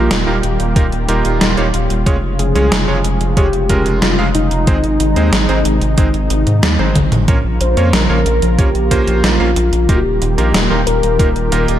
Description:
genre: synthwave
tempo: 92 BPM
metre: 4/4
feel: straight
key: unclear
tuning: A4 = 440 Hz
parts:
  - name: warm velvety synth lead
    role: melody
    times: 0.0-11.8 s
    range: Eb4 to C5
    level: -19 LUFS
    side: left 1 dB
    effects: chorus, tape echo
  - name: lush unison pad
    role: sustained chords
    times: 0.0-11.8 s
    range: C3 to Bb4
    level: -21 LUFS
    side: left 1 dB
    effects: chorus, sidechain pumping
  - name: bright electric grand piano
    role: stabs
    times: 0.0-11.8 s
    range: Ab3 to F5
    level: -21 LUFS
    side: right 3 dB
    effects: none
  - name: round analog bass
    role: bass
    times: 0.0-11.8 s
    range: Eb1 to Ab2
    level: -16 LUFS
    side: equal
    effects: sidechain pumping
  - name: gated 80s digital drum machine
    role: drums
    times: 0.1-11.8 s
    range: hi-hat, snare drum, toms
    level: -18 LUFS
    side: equal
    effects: gated reverb, gated reverb snare, overdrive
  - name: electronic kick drum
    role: drums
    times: 0.8-11.3 s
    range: none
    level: -14 LUFS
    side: equal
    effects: overdrive
room: light reverb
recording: dark, warm production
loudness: -12 LUFS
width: side -11 dB against mid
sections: 0.0-11.8 A section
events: drum fill 6.8-7.3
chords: 0.0 Ebadd9; 2.1 Db/F; 4.7 Ab; 7.3 Bbm; 9.9 Ebadd9

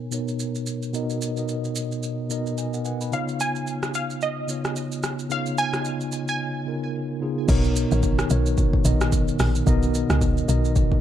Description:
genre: amapiano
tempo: 110 BPM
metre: 4/4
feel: swing 58% on 16ths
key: unclear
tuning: A4 = 437 Hz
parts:
  - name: analog pluck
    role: melody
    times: 0.0-7.2 s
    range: D#5 to G#5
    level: -28 LUFS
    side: right 1 dB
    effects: chorus, low-pass filter, digital delay
  - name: mellow tine electric piano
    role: accompaniment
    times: 0.0-11.0 s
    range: B2 to B5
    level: -25 LUFS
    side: equal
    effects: medium stereo tremolo, low-pass filter
  - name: deep house drum kit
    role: drums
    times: 0.1-11.0 s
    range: crash cymbal, hi-hat, kick drum, rim click, shaker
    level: -25 LUFS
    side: equal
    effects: none
  - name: woody log drum bass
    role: bass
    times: 7.5-10.9 s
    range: A#1 to C#2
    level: -22 LUFS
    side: equal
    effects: none
room: light reverb, digital ambience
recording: dark, warm production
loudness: -22 LUFS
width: side -11 dB against mid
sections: 0.0-7.5 A section; 7.5-11.0 B section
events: filter sweep 0.0-7.5; tine electric piano fill 2.3-3.1; break 6.4-7.5; drop 7.5-11.0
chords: 0.0 Bmaj7; 3.1 C#9; 7.5 Bmaj7

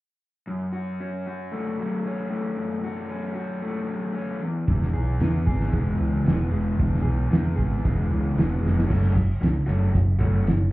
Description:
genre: indie rock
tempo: 114 BPM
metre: 4/4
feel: straight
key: unclear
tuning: A4 = 442 Hz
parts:
  - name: raw garage guitar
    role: riff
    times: 0.5-10.5 s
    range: E2 to G#4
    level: -27 LUFS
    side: left 1 dB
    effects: overdrive
  - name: growling picked electric bass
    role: bass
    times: 4.7-10.7 s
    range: E1 to E2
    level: -23 LUFS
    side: right 1 dB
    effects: overdrive
  - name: cloth-damped thuddy drum kit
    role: drums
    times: 4.7-10.6 s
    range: crash cymbal, hi-hat, kick drum, snare drum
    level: -24 LUFS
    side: right 1 dB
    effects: none
room: light reverb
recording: heard muffled through a wall, club reverb, EQ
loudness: -22 LUFS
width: side -18 dB against mid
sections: 0.5-8.9 A section; 8.9-10.7 B section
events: drum fill 8.6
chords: 0.5 F#m; 4.4 E; 8.9 F#m

